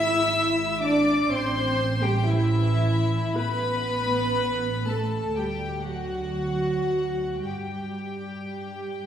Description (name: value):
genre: classical, slow romantic movement for string orchestra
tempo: 52-63 BPM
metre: 4/4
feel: rubato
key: G major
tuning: A4 = 441 Hz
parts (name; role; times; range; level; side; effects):
- rich studio violin section; melody; 0.0-9.1 s; E5 to E6; -31 LUFS; left 5 dB; none
- rich studio violin section; second line; 0.0-9.1 s; E4 to E5; -32 LUFS; left 2 dB; none
- warm studio viola section; accompaniment; 0.0-9.1 s; E4 to E5; -29 LUFS; right 1 dB; none
- dark studio cello section; bass; 0.0-9.1 s; E3 to E4; -29 LUFS; right 1 dB; none
- dark studio double bass section; bass; 0.0-9.1 s; G#1 to G2; -28 LUFS; right 2 dB; none
room: wet scoring stage reverb, RT60 2.1 s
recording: heard from further back in the room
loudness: -23 LUFS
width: side -9 dB against mid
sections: 0.0-9.1 A section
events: none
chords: 0.0 E7/G#; 1.3 Am; 3.4 Asus2; 5.4 G5/D; 6.4 D; 7.4 G5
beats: 0.35 1.31 2.27 | 3.36 4.38 5.37 6.39 | 7.45 8.53